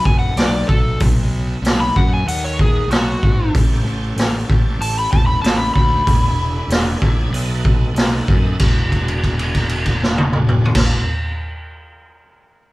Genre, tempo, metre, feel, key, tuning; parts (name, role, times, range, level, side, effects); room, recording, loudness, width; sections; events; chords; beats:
blues rock power trio and southern rock; 95 BPM; 4/4; straight; A4 = 440 Hz
overdriven slide guitar; melody; 0.0-7.0 s; F#4 to B5; -21 LUFS; left 1 dB
bright tonewheel organ; sustained chords; 0.0-11.0 s; A3 to B4; -30 LUFS; right 2 dB; slow rotary speaker, overdrive, chorus vibrato
fuzz picked electric bass; bass; 0.1-11.0 s; E1 to F#2; -21 LUFS; equal; overdrive
raw garage drum kit; drums; 0.1-10.9 s; crash cymbal, hi-hat, kick drum, snare drum, toms; -16 LUFS; equal
moderate large studio reverb, RT60 0.8 s; band playing live in one room; -14 LUFS; side -20 dB against mid
0.0-8.6 A section; 8.6-11.1 B section
electric slide guitar solo 0.0-8.6; held note 8.6-10.7
0.0 B7; 3.5 A7; 6.1 E7; 7.3 B7; 8.6 E9
0.36 | 1.00 1.63 2.27 2.90 | 3.53 4.17 4.80 5.43 | 6.06 6.70 7.33 7.96 | 8.59 9.22 9.85 10.48